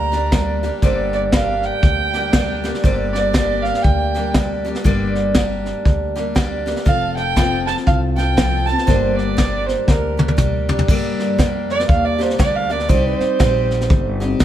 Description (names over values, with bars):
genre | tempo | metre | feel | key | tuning
honky-tonk and classic country | 119 BPM | 4/4 | swing 61% on 8ths | G minor | A4 = 440 Hz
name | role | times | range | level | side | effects
dark fiddle | second line | 0.0-14.0 s | Bb4 to Bb5 | -21 LUFS | right 3 dB | none
picked steel-string acoustic guitar | accompaniment | 0.0-14.4 s | G2 to A4 | -22 LUFS | left 1 dB | none
upright bass | bass | 0.0-14.4 s | F1 to G2 | -23 LUFS | equal | none
vintage brush drum kit | drums | 0.1-14.4 s | crash cymbal, hi-hat, kick drum, snare drum, toms | -18 LUFS | equal | none
room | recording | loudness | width
light reverb | heard from further back in the room | -15 LUFS | side -11 dB against mid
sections
0.0-10.9 A section; 10.9-14.4 B section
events
fiddle solo 0.0-10.9, 10.9-14.4; drum fill 9.9-10.9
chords
0.0 Gm; 6.9 F; 8.9 Gm; 12.9 Cm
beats
0.33 | 0.83 1.33 1.84 2.34 | 2.84 3.34 3.85 4.35 | 4.85 5.36 5.86 6.36 | 6.86 7.36 7.87 8.37 | 8.87 9.37 9.88 10.38 | 10.88 11.38 11.89 12.39 | 12.89 13.40 13.90 14.40